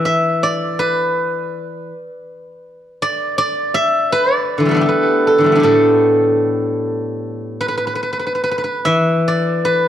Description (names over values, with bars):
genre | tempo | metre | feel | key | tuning
chinese traditional, Chinese solo plucked strings | 70-83 BPM | 4/4 | rubato | A shang mode | A4 = 441 Hz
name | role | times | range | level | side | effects
steel-string zither | solo | 0.0-9.9 s | A2 to E5 | -14 LUFS | equal | none
room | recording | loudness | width
moderate concert hall reverb, RT60 2.4 s | worn, warbling old tape, cassette tape, warbly pitch drift | -14 LUFS | side -10 dB against mid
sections
0.0-8.9 A section; 8.9-9.9 B section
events
none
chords
none